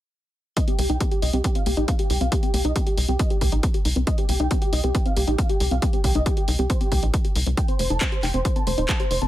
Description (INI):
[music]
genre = uplifting trance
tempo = 137 BPM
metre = 4/4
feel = straight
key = C dorian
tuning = A4 = 439 Hz
[part]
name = dense compressed supersaw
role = melody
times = 0.6-9.3 s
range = G4 to A5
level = -28 LUFS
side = equal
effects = sidechain pumping, low-pass filter, digital delay
[part]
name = tight sequenced synth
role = arpeggios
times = 0.6-9.3 s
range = A3 to G4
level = -29 LUFS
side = left 1 dB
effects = chorus, sidechain pumping, digital delay
[part]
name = electronic kick drum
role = drums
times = 0.6-9.0 s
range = none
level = -22 LUFS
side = equal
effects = overdrive
[part]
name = punchy analog drum machine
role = drums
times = 0.6-9.3 s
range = handclaps, hi-hat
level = -30 LUFS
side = left 1 dB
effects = none
[part]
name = tight sequencer bass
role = bass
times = 0.8-9.3 s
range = Eb1 to C2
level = -23 LUFS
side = equal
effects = sidechain pumping
[sound]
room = little or no reverb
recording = none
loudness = -20 LUFS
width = side -14 dB against mid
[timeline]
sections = 0.6-9.3 A section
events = none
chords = 0.6 Cm; 7.6 F